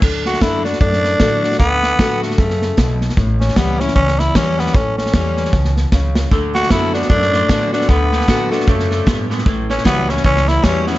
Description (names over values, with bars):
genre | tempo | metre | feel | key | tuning
rockabilly | 153 BPM | 4/4 | swing 59% on 8ths | D major | A4 = 440 Hz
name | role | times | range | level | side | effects
picked steel-string acoustic guitar | accompaniment | 0.0-11.0 s | E2 to F#4 | -21 LUFS | left 3 dB | none
upright bass | bass | 0.0-11.0 s | A1 to A2 | -20 LUFS | equal | none
vintage drum kit | drums | 0.0-11.0 s | crash cymbal, hi-hat, kick drum, snare drum | -18 LUFS | right 1 dB | none
growling tenor saxophone | melody | 0.3-11.0 s | A3 to F#4 | -18 LUFS | equal | none
electric guitar through a small old amp | riff | 6.3-11.0 s | A2 to B3 | -24 LUFS | right 2 dB | lush chorus
room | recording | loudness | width
small room ambience | nothing above 7.8 kHz | -13 LUFS | side -16 dB against mid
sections
0.0-11.0 A section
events
drum fill 5.9-6.3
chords
0.0 D; 3.2 A7; 6.3 D; 9.5 A7